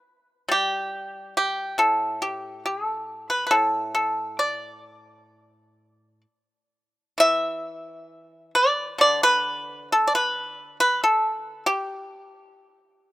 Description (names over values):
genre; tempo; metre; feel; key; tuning
chinese traditional, Chinese solo plucked strings; 62-71 BPM; 4/4; rubato; D zhi mode; A4 = 438 Hz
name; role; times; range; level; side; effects
pipa; solo; 0.5-13.1 s; A2 to E5; -21 LUFS; equal; none
room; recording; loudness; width
small room ambience; rough home demo mix; -21 LUFS; side -16 dB against mid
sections
0.0-7.2 A section; 7.2-13.1 B section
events
none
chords
none